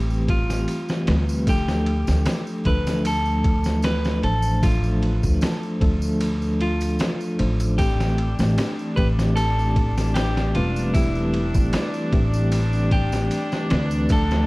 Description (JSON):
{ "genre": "trip hop", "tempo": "76 BPM", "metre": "4/4", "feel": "swing 53% on 16ths", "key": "A minor", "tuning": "A4 = 440 Hz", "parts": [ { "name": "mellow tine electric piano", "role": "accompaniment", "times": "0.0-14.5 s", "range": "E3 to C5", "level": "-25 LUFS", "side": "equal", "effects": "tremolo, tape echo" }, { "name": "upright bass", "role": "bass", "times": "0.0-14.5 s", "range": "E1 to D2", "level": "-22 LUFS", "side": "equal", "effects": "none" }, { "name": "tambourine", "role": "percussion", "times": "0.1-14.5 s", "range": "none", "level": "-42 LUFS", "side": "right 1 dB", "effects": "none" }, { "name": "clean electric guitar", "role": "melody", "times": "0.3-14.5 s", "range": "E4 to B4", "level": "-29 LUFS", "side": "equal", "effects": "tape echo" }, { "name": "trip hop sampler-style drum kit", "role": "drums", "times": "0.3-14.5 s", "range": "kick drum, ride cymbal, snare drum", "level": "-25 LUFS", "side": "equal", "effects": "none" }, { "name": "rich chamber string section", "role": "sustained chords", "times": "7.8-14.5 s", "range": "D4", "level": "-31 LUFS", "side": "equal", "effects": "none" } ], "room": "small room ambience", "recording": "dark, warm production, vinyl crackle", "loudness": "-19 LUFS", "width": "side -22 dB against mid", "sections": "0.0-14.5 A section", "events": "none", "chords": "0.0 Am7; 1.5 Dm; 7.8 Am7", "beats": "0.68 | 1.47 2.26 3.05 3.84 | 4.63 5.42 6.21 7.00 | 7.79 8.57 9.37 10.15 | 10.94 11.73 12.52 13.31 | 14.10" }